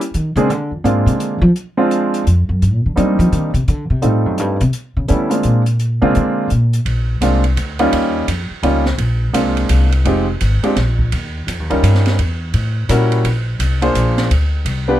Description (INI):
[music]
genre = jazz, small-group swing and bop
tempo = 169 BPM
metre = 3/4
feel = swing 64% on 8ths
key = Bb mixolydian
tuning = A4 = 440 Hz
[part]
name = open jazz drum kit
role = drums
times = 0.0-14.8 s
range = hi-hat, kick drum, ride cymbal, snare drum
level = -26 LUFS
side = right 3 dB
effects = none
[part]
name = upright bass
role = bass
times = 0.1-15.0 s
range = F1 to G3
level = -15 LUFS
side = equal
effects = none
[part]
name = clear baby grand piano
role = accompaniment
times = 0.4-15.0 s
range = F3 to C5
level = -16 LUFS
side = right 1 dB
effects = none
[sound]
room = little or no reverb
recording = dark, warm production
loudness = -14 LUFS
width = side -12 dB against mid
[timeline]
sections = 0.0-6.9 A section; 6.9-15.0 B section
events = upright bass solo 0.0-6.9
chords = 0.5 Bb9; 1.6 Dm7b5; 2.3 N.C.; 2.6 Cm7; 3.7 F9; 4.7 Bb9; 7.9 Eb9; 9.0 Bb9; 10.0 Fm7; 10.8 N.C.; 11.1 Eb9; 12.2 Edim7; 13.2 Bb9; 14.3 Gadd11